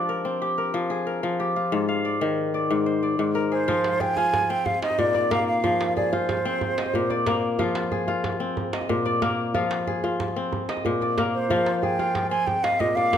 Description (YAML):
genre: west african traditional, West African string and xylophone music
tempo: 123 BPM (dotted quarters)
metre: 12/8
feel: straight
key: F dorian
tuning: A4 = 440 Hz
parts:
  - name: kora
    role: arpeggios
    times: 0.0-13.2 s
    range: Ab2 to F5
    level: -24 LUFS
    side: left 2 dB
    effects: none
  - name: wooden flute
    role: melody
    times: 3.5-7.4, 11.3-13.2 s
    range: C5 to Ab5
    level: -24 LUFS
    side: right 2 dB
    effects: none
  - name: djembe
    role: percussion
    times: 3.7-13.2 s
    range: none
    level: -30 LUFS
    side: right 4 dB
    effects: none
room: moderate recital hall reverb, RT60 1.6 s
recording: none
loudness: -22 LUFS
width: side -9 dB against mid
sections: 0.0-3.7 A section; 3.7-13.2 B section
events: none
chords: 0.0 Fm; 1.7 Ab; 3.7 Fm; 4.7 Bb; 5.6 Fm; 6.6 Bb; 7.6 Fm; 8.6 Bb; 9.5 Fm; 10.5 Bb; 11.5 Fm; 12.5 Bb